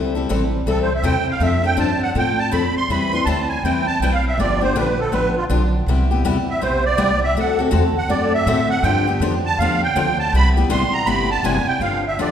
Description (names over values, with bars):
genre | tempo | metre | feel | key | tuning
acoustic string swing (jazz manouche) | 161 BPM | 4/4 | swing 62% on 8ths | C major | A4 = 440 Hz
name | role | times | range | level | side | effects
picked old ladder-braced acoustic guitar | accompaniment | 0.0-12.3 s | C3 to B4 | -20 LUFS | left 3 dB | none
upright bass | bass | 0.0-12.3 s | F#1 to A2 | -22 LUFS | right 1 dB | none
musette accordion | melody | 0.7-12.3 s | F4 to C6 | -20 LUFS | right 3 dB | none
room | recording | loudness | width
wet scoring stage reverb, RT60 1.5 s | recorded in a church or concert hall | -16 LUFS | side -9 dB against mid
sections
0.0-11.8 A section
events
accordion solo 0.0-12.3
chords
0.0 C6; 1.4 F6; 2.9 Cmaj7; 4.4 G7; 5.9 Cmaj7; 7.4 D7; 8.9 G7; 10.3 Cmaj7